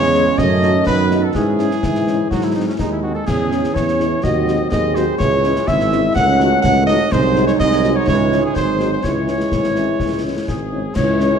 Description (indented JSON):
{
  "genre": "military-style march for wind band",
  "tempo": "125 BPM",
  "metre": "2/4",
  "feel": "straight",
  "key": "C# minor",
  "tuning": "A4 = 437 Hz",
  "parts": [
    { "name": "warm cornet", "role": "melody", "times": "0.0-11.4 s", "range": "C#4 to F#5", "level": "-21 LUFS", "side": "equal", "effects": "none" },
    { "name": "mellow euphonium", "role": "second line", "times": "0.0-11.4 s", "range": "C#4 to G#4", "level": "-21 LUFS", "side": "right 2 dB", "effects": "none" },
    { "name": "mellow woodwind section", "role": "second line", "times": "0.0-11.4 s", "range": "C#4 to F#5", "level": "-24 LUFS", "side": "left 2 dB", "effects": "none" },
    { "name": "mellow trombone section", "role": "sustained chords", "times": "0.0-11.4 s", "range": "C#3 to C#4", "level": "-25 LUFS", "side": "right 2 dB", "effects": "none" },
    { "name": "warm tuba", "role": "bass", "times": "0.0-11.4 s", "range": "G#1 to G#2", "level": "-20 LUFS", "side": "right 2 dB", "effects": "none" },
    { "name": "concert snare drum, concert bass drum and clash cymbals", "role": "drums", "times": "0.0-11.3 s", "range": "none", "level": "-24 LUFS", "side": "left 1 dB", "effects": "none" },
    { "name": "dark French horn section", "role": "accompaniment", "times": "0.1-11.3 s", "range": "G#3 to G#4", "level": "-26 LUFS", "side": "left 6 dB", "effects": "none" }
  ],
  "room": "wet recital hall reverb, RT60 1.5 s",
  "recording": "dark, warm production",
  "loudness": "-14 LUFS",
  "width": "side -7 dB against mid",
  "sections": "0.0-11.0 A section",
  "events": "none",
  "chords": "0.4 D#dim/F#; 1.4 C#m/G#; 2.3 G#; 3.3 C#m/E; 4.2 G#7/D#; 5.2 C#m; 6.2 D#m7b5/C#; 7.1 G#7/B#; 8.1 C#m; 8.6 G#7; 9.0 C#m",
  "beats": "| 0.39 0.87 | 1.35 1.83 | 2.31 2.79 | 3.27 3.75 | 4.24 4.71 | 5.20 5.68 | 6.16 6.64 | 7.12 7.60 | 8.08 8.56 | 9.04 9.52 | 10.00 10.48 | 10.96"
}